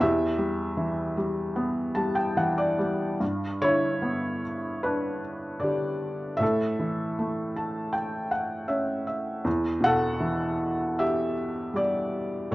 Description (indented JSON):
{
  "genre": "classical, lyrical solo piano",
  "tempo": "77 BPM",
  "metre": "4/4",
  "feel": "uneven beats, rubato",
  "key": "E minor, G lydian from 3.2 s",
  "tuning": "A4 = 440 Hz",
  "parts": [
    { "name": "felt-muted upright piano", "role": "solo", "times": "0.0-12.5 s", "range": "E2 to A5", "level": "-25 LUFS", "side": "equal", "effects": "none" }
  ],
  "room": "moderate recital hall reverb, RT60 1.5 s",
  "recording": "worn, warbling old tape, cassette tape, warbly pitch drift",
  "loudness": "-25 LUFS",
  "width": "side -18 dB against mid",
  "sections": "0.0-3.2 A section; 3.2-12.5 B section",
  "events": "felt piano fill 1.6-3.2, 7.2-9.5",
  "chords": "0.0 Em; 3.2 G; 6.4 A; 9.5 Em"
}